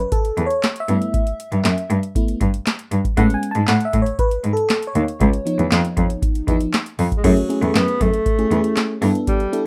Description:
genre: early-eighties boogie funk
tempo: 118 BPM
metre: 4/4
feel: straight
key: F# dorian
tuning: A4 = 438 Hz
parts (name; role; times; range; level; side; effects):
- FM electric piano with soft pad layer; accompaniment; 0.0-9.7 s; E#3 to A5; -24 LUFS; equal; chorus
- booming analog drum machine; drums; 0.0-9.6 s; crash cymbal, handclaps, hi-hat, kick drum, snare drum; -23 LUFS; equal; none
- warm cello; bass; 0.4-9.1 s; C#2 to A2; -21 LUFS; equal; none
- breathy alto saxophone; melody; 7.2-9.6 s; F#3 to B3; -24 LUFS; equal; slapback echo
room: moderate studio ambience, RT60 0.5 s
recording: rough home demo mix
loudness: -19 LUFS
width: mono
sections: 0.0-7.2 A section; 7.2-9.7 B section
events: FM electric piano solo 0.0-7.2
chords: 0.0 F#m7 (rootless); 0.9 G6; 3.2 Amaj7; 5.2 C#7; 7.2 F#m9; 9.0 G6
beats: 0.12 0.63 | 1.14 1.65 2.16 2.66 | 3.17 3.68 4.19 4.70 | 5.21 5.71 6.22 6.73 | 7.24 7.75 8.26 8.77 | 9.27

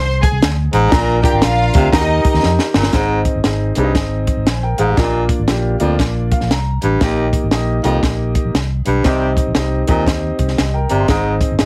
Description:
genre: uptempo 1960s-style soul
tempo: 118 BPM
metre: 4/4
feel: swing 63% on 8ths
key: unclear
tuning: A4 = 441 Hz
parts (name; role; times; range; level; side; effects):
- rich studio violin section; second line; 0.0-2.4 s; Eb4 to C6; -22 LUFS; equal; none
- vintage muted fingered electric bass; bass; 0.0-11.7 s; G1 to F2; -21 LUFS; equal; none
- compact cocktail drum kit; drums; 0.2-11.7 s; hi-hat, kick drum, snare drum; -19 LUFS; equal; none
- clear baritone saxophone; riff; 0.7-11.3 s; Eb2 to C3; -20 LUFS; equal; none
- warm upright piano; accompaniment; 0.9-11.7 s; Bb3 to C6; -22 LUFS; equal; none
- mellow horn section; second line; 9.0-9.3 s; Eb3 to G4; -27 LUFS; equal; slapback echo
room: light reverb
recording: heavily compressed radio sound, multiband compression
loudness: -16 LUFS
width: mono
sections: 0.0-2.9 A section; 2.9-11.7 B section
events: drum fill 2.4-2.9; upright piano fill 6.0-7.0; band accent 9.1-11.1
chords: 0.0 Ab; 0.9 Bb; 1.9 Eb; 2.9 Ab; 5.0 Bb; 7.0 Eb; 9.1 Cm; 11.1 Ab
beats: 0.41 | 0.92 1.43 1.93 2.44 | 2.94 3.45 3.96 4.47 | 4.98 5.49 6.00 6.51 | 7.01 7.53 8.03 8.54 | 9.05 9.56 10.07 10.58 | 11.09 11.60

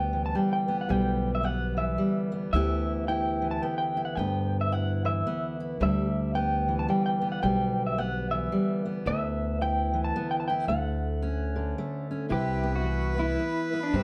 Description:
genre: acoustic folk duo or small band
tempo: 110 BPM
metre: 3/4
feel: swing 61% on 8ths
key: unclear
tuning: A4 = 439 Hz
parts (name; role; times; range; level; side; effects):
- electric guitar through a small old amp; melody; 0.0-14.0 s; C4 to A5; -33 LUFS; equal; tremolo
- fingerpicked steel-string acoustic guitar; accompaniment; 0.0-14.0 s; D2 to G4; -32 LUFS; equal; none
- upright bass; bass; 0.0-14.0 s; B1 to G2; -32 LUFS; equal; none
- warm fiddle; second line; 12.3-14.0 s; B4; -36 LUFS; equal; none
room: moderate studio reverb, RT60 0.6 s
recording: none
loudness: -28 LUFS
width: mono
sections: 0.0-12.3 A section; 12.3-14.0 B section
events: none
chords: 0.0 Em/D; 2.5 G6/D; 5.8 Em/D; 9.1 G69/D; 10.7 Dmaj7; 12.3 Cmaj7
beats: 0.37 | 0.91 1.45 2.00 | 2.54 3.08 3.63 | 4.17 4.71 5.26 | 5.80 6.34 6.89 | 7.43 7.97 8.52 | 9.06 9.60 10.14 | 10.68 11.22 11.77 | 12.31 12.85 13.39 | 13.94

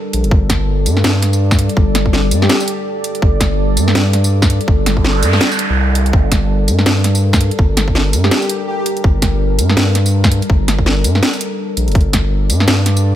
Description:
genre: half-time drum and bass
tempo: 165 BPM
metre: 4/4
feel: swing 59% on 16ths, half-time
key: G minor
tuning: A4 = 442 Hz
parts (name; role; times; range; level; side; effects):
- deep dark ambient pad; sustained chords; 0.0-13.2 s; G3 to D5; -20 LUFS; left 1 dB; chorus, built-in reverb, sidechain pumping
- saturated sub bass; bass; 0.1-13.2 s; F1 to G2; -14 LUFS; equal; none
- drum and bass drum kit; drums; 0.1-13.0 s; hi-hat, snare drum, tambourine; -17 LUFS; equal; overdrive, small room reverb
- electronic kick drum; drums; 0.3-12.2 s; none; -14 LUFS; equal; overdrive, small room reverb
- airy dreamy lead; melody; 2.4-2.8, 8.2-8.8 s; G4; -23 LUFS; right 1 dB; chorus, digital delay
- noise sweep; sound effects; 4.9-6.1 s; none; -21 LUFS; right 4 dB; none
room: little or no reverb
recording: none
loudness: -12 LUFS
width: side -12 dB against mid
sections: 0.0-13.2 A section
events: noise sweep 4.9-6.1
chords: 0.0 Gmadd9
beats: | 0.32 0.68 1.04 1.41 | 1.77 2.13 2.50 2.86 | 3.22 3.59 3.95 4.32 | 4.68 5.04 5.41 5.77 | 6.13 6.50 6.86 7.22 | 7.59 7.95 8.31 8.68 | 9.04 9.41 9.77 10.13 | 10.50 10.86 11.22 11.59 | 11.95 12.31 12.68 13.04

